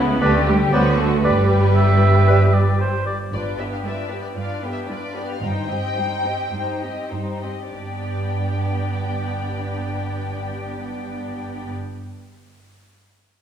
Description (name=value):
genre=quick classical-period movement for symphony orchestra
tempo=97-119 BPM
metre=4/4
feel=straight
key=G major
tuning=A4 = 440 Hz
part: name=muted studio violin section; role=melody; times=0.0-11.7 s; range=G4 to G5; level=-30 LUFS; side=left 4 dB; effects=none
part: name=muted studio violin section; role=second line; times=0.0-11.7 s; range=Eb4 to Eb5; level=-29 LUFS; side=left 3 dB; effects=none
part: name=silver concert flute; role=second line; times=0.0-3.0 s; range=G5 to B5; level=-32 LUFS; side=left 5 dB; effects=none
part: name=muted studio viola section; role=accompaniment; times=0.0-11.7 s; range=G3 to F4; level=-26 LUFS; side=right 1 dB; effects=none
part: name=dark French horn section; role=sustained chords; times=0.0-3.1 s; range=G3 to B3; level=-31 LUFS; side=left 2 dB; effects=none
part: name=muted studio cello section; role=bass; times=0.0-11.7 s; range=G2 to D3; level=-26 LUFS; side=right 2 dB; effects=none
part: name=muted studio double bass section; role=bass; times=0.0-11.7 s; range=G1 to D2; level=-22 LUFS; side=right 2 dB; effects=none
part: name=clear clarinet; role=second line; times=0.2-2.5 s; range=B4 to C5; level=-26 LUFS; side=right 1 dB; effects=none
part: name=warm cor anglais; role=second line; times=0.2-3.2 s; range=C5 to E5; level=-24 LUFS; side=equal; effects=none
part: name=dark bassoon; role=accompaniment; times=0.2-2.5 s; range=F#3 to G3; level=-27 LUFS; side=right 3 dB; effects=none
room=wet recital hall reverb, RT60 1.4 s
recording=recorded in a church or concert hall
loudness=-18 LUFS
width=side -9 dB against mid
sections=0.0-3.3 A section; 3.3-7.7 B section; 7.7-12.6 C section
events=slowing down 2.3-7.7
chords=0.2 G/D; 0.7 D7; 1.3 G; 3.3 G7; 5.4 Cm/G; 7.7 G